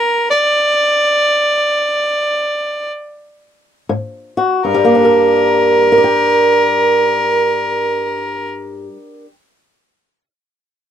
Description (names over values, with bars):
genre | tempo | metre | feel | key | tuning
acoustic country blues, solo or duo | free time | none | none | G minor | A4 = 444 Hz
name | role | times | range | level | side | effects
rich fiddle | melody | 0.0-8.5 s | Bb4 to D5 | -14 LUFS | equal | none
fingerpicked swing-style acoustic guitar | accompaniment | 3.9-9.3 s | G2 to G5 | -13 LUFS | equal | none
room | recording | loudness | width
light reverb | dry, close 1970s-style studio recording | -12 LUFS | side -9 dB against mid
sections
0.0-4.7 A section; 4.7-7.7 B section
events
slowing down 0.0-4.7; stop 0.0-3.9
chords
0.0 N.C.; 3.9 F#sus2/G#; 4.7 Gm